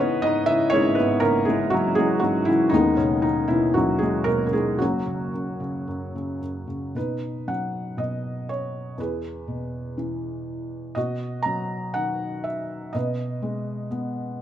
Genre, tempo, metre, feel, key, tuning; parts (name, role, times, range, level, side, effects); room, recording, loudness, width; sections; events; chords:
classical, lyrical solo piano; 54-62 BPM; 4/4; rubato; B major from 7.0 s; A4 = 439 Hz
felt-muted upright piano; solo; 0.0-14.4 s; D#1 to A#5; -22 LUFS; equal
light reverb; close, detailed microphones; -22 LUFS; side -10 dB against mid
0.0-7.0 A section; 7.0-14.4 B section
0.0 C#madd9; 2.7 G#m/D#; 4.8 F#; 7.0 B; 9.0 E; 11.0 B; 12.9 G#m/B